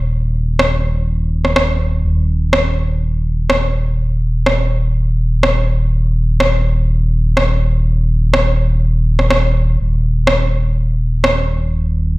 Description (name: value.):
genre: afro house.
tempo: 124 BPM.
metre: 4/4.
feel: straight.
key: unclear.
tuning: A4 = 440 Hz.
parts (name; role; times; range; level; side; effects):
smooth synth bass; bass; 0.0-12.2 s; Eb1; -14 LUFS; equal; none.
electronic rim click; drums; 0.6-11.3 s; none; -16 LUFS; equal; overdrive, studio reverb.
room: light reverb.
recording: played on a big sound system in a bare room, large studio reverb.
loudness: -13 LUFS.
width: side -20 dB against mid.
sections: 0.0-12.2 A section.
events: none.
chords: none.